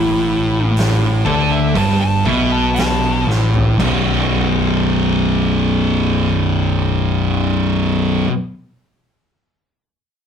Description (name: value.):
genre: stoner and doom metal.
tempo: 57-63 BPM.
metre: 4/4.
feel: straight.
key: B minor.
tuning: A4 = 440 Hz.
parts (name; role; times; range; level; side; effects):
fuzz lead guitar; melody; 0.0-3.3 s; E4 to A5; -20 LUFS; left 2 dB; distortion.
thick fuzz guitar; riff; 0.0-8.3 s; B1 to D3; -19 LUFS; left 6 dB; distortion.
thick fuzz guitar; riff; 0.0-8.3 s; B1 to D3; -17 LUFS; right 3 dB; distortion.
growling fingered electric bass; bass; 0.0-8.2 s; B0 to D2; -23 LUFS; equal; overdrive.
oversized low-tuned drum kit; drums; 0.8-4.0 s; crash cymbal, hi-hat, kick drum, snare drum, toms; -24 LUFS; equal; none.
room: moderate small room reverb, RT60 0.6 s.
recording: rough rehearsal-room recording.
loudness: -14 LUFS.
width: side -7 dB against mid.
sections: 0.0-3.8 A section; 3.8-8.0 B section.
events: slowing down 0.0-3.8; lead electric guitar solo 0.0-3.8; drum fill 3.3-3.8.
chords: 0.0 A5; 3.8 B5.